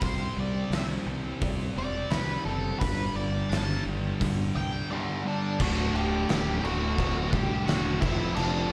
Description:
quiet-loud alternative rock; 86 BPM; 4/4; straight; A4 = 437 Hz
octave-fuzz lead guitar; melody; 0.0-8.7 s; B3 to A5; -36 LUFS; equal; distortion, plate reverb, digital delay
thick fuzz guitar; riff; 0.0-8.7 s; D2 to C4; -36 LUFS; equal; distortion
thick fuzz guitar; riff; 0.0-8.7 s; D2 to C4; -38 LUFS; equal; distortion
growling fingered electric bass; bass; 0.0-8.7 s; D1 to C2; -34 LUFS; equal; overdrive
oversized low-tuned drum kit; drums; 0.0-8.5 s; crash cymbal, hi-hat, kick drum, snare drum; -34 LUFS; equal
tonewheel organ; sustained chords; 5.6-8.7 s; F3 to A4; -44 LUFS; equal
tight distorted guitar; riff; 5.6-8.7 s; D2 to F3; -39 LUFS; equal; distortion, slapback echo
light reverb; live gig heard through the venue's PA, club reverb; -28 LUFS; mono
0.0-5.6 A section; 5.6-8.7 B section
lead electric guitar solo 0.0-5.6
0.0 C5; 2.8 G; 5.6 D; 8.0 F

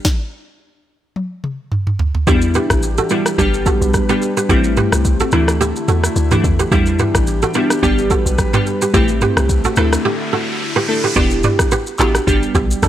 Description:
afrobeats; 108 BPM; 4/4; swing 55% on 16ths; E minor; A4 = 444 Hz
afro-pop drum kit; drums; 0.0-12.9 s; handclaps, kick drum, rim click, shaker, snare drum, toms; -18 LUFS; equal
glassy digital keys; accompaniment; 2.3-12.9 s; E3 to A4; -18 LUFS; equal; chorus
airy breathy pad; sustained chords; 2.3-11.1 s; D3 to B4; -23 LUFS; left 2 dB; chorus
kora; riff; 2.3-12.9 s; D4 to D5; -20 LUFS; right 4 dB
deep log drum bass; bass; 2.3-12.9 s; E1 to E2; -18 LUFS; equal
riser; sound effects; 9.6-11.2 s; -25 LUFS; equal
little or no reverb; dry, gritty hardware recording; -13 LUFS; side -12 dB against mid
0.0-2.3 A section; 2.3-11.2 B section; 11.2-12.9 C section
stop 0.0-2.3; drum fill 1.2-2.3; riser 9.6-11.2; break 10.0-11.2
0.0 N.C.; 2.3 Em7; 3.4 G; 4.5 Am7; 5.3 Dsus2; 6.7 Em7; 7.8 G; 8.9 Am7; 9.8 Dsus2; 11.2 Em7; 12.3 G

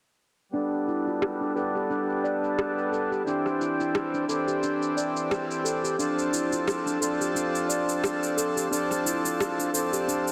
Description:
organic downtempo; 88 BPM; 4/4; swing 56% on 16ths; A4 = 440 Hz
hand-pumped harmonium; accompaniment; 0.5-10.3 s; E3 to A4; -30 LUFS; equal; low-pass filter, tape echo
steel tongue drum; arpeggios; 0.5-10.3 s; D4 to D5; -31 LUFS; equal; low-pass filter, tape echo
electronic cabasa and rim click; drums; 0.5-10.3 s; -34 LUFS; equal; overdrive, low-pass filter on perc, low-pass filter on snare
moderate lush hall reverb, RT60 2.3 s; dense, heavily limited modern master; -27 LUFS; mono
0.5-10.3 A section
filter sweep on drum 0.5-10.3; filter sweep on steel tongue drum 0.5-10.3; filter sweep on harmonium 0.5-10.3
0.5 Gadd9; 3.3 Cadd9; 6.0 Dm7

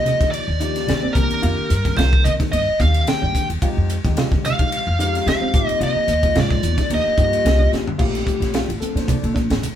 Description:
electric jazz fusion; 110 BPM; 4/4; swing 54% on 16ths; Eb major; A4 = 438 Hz
biting lead guitar; melody; 0.0-7.7 s; Bb4 to G5; -21 LUFS; equal; overdrive
overdriven tine electric piano; accompaniment; 0.0-9.7 s; Eb3 to D5; -26 LUFS; left 4 dB; phaser
upright bass; bass; 0.0-9.7 s; A1 to F3; -21 LUFS; equal
crisp fusion drum kit; drums; 0.1-9.8 s; crash cymbal, hi-hat, kick drum, ride cymbal, snare drum, toms; -22 LUFS; equal
congas; percussion; 0.1-9.8 s; -27 LUFS; right 4 dB
mellow electric guitar; stabs; 0.2-9.5 s; C4 to F4; -30 LUFS; right 3 dB
moderate studio reverb, RT60 0.7 s; band playing live in one room; -16 LUFS; side -10 dB against mid
0.0-8.0 A section; 8.0-9.8 B section
drum fill 7.7
0.0 Ebmaj9; 1.2 Cm7; 3.6 Fm9; 5.5 Abmaj13; 6.9 Ebmaj9; 8.0 Bbmaj13

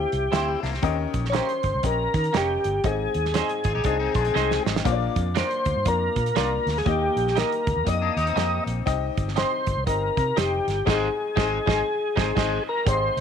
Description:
uptempo 1960s-style soul; 120 BPM; 4/4; swing 61% on 8ths; A4 = 444 Hz
tonewheel organ; melody; 0.0-13.2 s; G4 to Eb5; -25 LUFS; left 1 dB; chorus vibrato, slow rotary speaker
clear upright piano; accompaniment; 0.0-13.2 s; Ab2 to C6; -30 LUFS; left 12 dB
vintage muted fingered electric bass; bass; 0.0-13.2 s; F1 to Eb3; -28 LUFS; equal
warm soul drum kit; drums; 0.1-13.2 s; crash cymbal, hi-hat, kick drum, snare drum; -27 LUFS; right 5 dB
electric guitar at the edge of break-up; riff; 0.3-4.8, 8.0-12.6 s; Ab3 to Ab4; -33 LUFS; left 12 dB; warbly pitch drift
clean electric guitar; stabs; 0.3-12.6 s; Bb3 to Eb5; -32 LUFS; right 14 dB; phaser
light reverb, small room ambience; 1960s-style stereo with parts hard left and right; -21 LUFS; side -7 dB against mid
0.0-12.9 A section
upright piano fill 0.1-0.8, 3.9-4.9; drum fill 4.4-4.9; band accent 10.9-12.9
0.0 C; 0.8 Eb7; 2.8 Ab; 4.9 Bb; 6.9 Eb; 8.9 Cm; 10.9 Ab

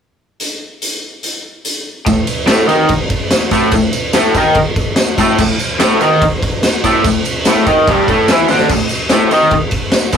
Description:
garage rock duo or trio; 145 BPM; 4/4; straight; A4 = 441 Hz
raw garage drum kit; drums; 0.4-10.2 s; crash cymbal, hi-hat, kick drum, ride cymbal, snare drum; -15 LUFS; equal
raw garage guitar; riff; 2.1-10.2 s; G2 to E4; -11 LUFS; equal; overdrive
tambourine; percussion; 2.1-10.2 s; -27 LUFS; right 6 dB
moderate booth ambience, RT60 0.2 s; rough rehearsal-room recording, warm saturation; -11 LUFS; side -7 dB against mid
0.4-2.1 A section; 2.1-10.2 B section
drum fill 8.5
0.4 N.C.; 2.1 A5

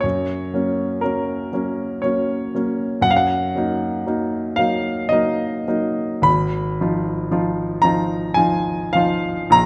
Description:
classical, romantic nocturne for solo piano; 48-60 BPM; 3/4; rubato; A4 = 441 Hz
clear grand piano; solo; 0.0-9.7 s; Ab1 to Cb6; -20 LUFS; equal
moderate recital hall reverb, RT60 1.5 s; -21 LUFS; mono
0.0-9.7 A section
0.0 F#; 3.1 Ebm/Gb; 6.3 Fm7b5/Ab

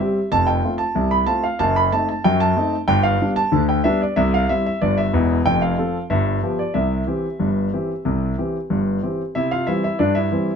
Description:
ragtime piano; 93 BPM; 2/4; straight; C major; A4 = 440 Hz
warm concert grand piano; solo; 0.0-10.6 s; E1 to B5; -17 LUFS; equal
moderate studio reverb, RT60 0.6 s; dark, warm production; -17 LUFS; side -6 dB against mid
0.0-9.4 A section; 9.4-10.6 A section
0.3 F; 1.6 F#dim7; 2.9 G; 4.2 C; 5.5 F; 6.1 G7; 6.7 C

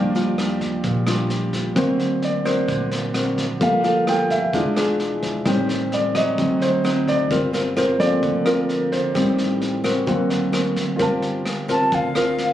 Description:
bossa nova; 130 BPM; 4/4; straight; G minor; A4 = 445 Hz
nylon-string guitar; accompaniment; 0.0-12.5 s; A2 to A#4; -23 LUFS; left 2 dB
warm concert grand piano; accompaniment; 0.0-12.5 s; Eb3 to A5; -21 LUFS; equal
upright bass; bass; 0.0-12.5 s; E1 to Eb2; -29 LUFS; right 4 dB
vintage brush drum kit; drums; 0.2-12.4 s; kick drum, rim click, snare drum; -29 LUFS; equal
breathy mellow concert flute; melody; 11.7-12.5 s; F5 to A5; -21 LUFS; equal
little or no reverb; recorded on a phone in the room, club reverb, compression; -18 LUFS; side -12 dB against mid
0.0-11.0 A section; 11.0-12.5 B section
grand piano solo 0.0-11.0
0.0 Ebmaj9; 1.8 Daug7; 3.6 Gm9; 4.5 E7b9; 5.5 Am7b5; 6.4 D7b9; 7.3 Gm11; 9.2 Am7b5; 10.1 D7b13; 11.0 Gm11

